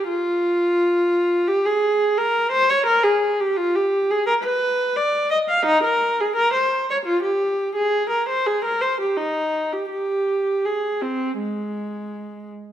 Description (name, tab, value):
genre	classical, baroque-style suite movement for unaccompanied viola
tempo	85 BPM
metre	4/4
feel	rubato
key	Ab major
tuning	A4 = 440 Hz
part	warm viola	solo	0.0-12.5 s	Ab3 to F5	-19 LUFS	equal	none
room	wet recital hall reverb, RT60 1.7 s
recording	minimal, uncompressed stereo recording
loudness	-18 LUFS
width	side -11 dB against mid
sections	0.0-12.7 A section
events	none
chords	none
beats	0.08 0.77 | 1.48 2.18 2.88 3.58 | 4.28 4.96 5.66 6.36 | 7.06 7.75 8.45 9.17 | 9.89 10.64 11.39 12.12